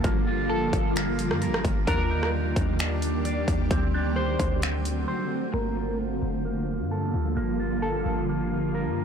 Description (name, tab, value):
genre	hip hop, atmospheric cloud-rap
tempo	131 BPM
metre	4/4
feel	half-time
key	G minor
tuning	A4 = 441 Hz
part	granular cloud pad	sustained chords	0.0-9.0 s	D3 to D5	-28 LUFS	right 1 dB	built-in reverb, sidechain pumping, low-pass filter
part	electric guitar with an envelope filter	arpeggios	0.0-9.0 s	Bb3 to D5	-34 LUFS	right 3 dB	phaser, low-pass filter, tape echo
part	clean 808-style bass	bass	0.0-9.0 s	F1 to G2	-30 LUFS	equal	none
part	big-room dance drum kit	drums	0.0-5.0 s	finger snaps, hi-hat, kick drum, rim click	-28 LUFS	equal	overdrive, soft clipping on snare
part	clean electric guitar	melody	0.5-8.3 s	A4 to C5	-33 LUFS	equal	analog chorus, low-pass filter, tape echo
room	light reverb, digital ambience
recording	blown-out, overdriven recording, overdrive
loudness	-24 LUFS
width	side -7 dB against mid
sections	0.0-5.5 A section; 5.5-9.0 B section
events	drums muted 5.1-5.5; filter sweep 5.5-9.0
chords	0.0 Gm9; 1.9 Ebmaj7; 3.7 D7; 5.5 Gm9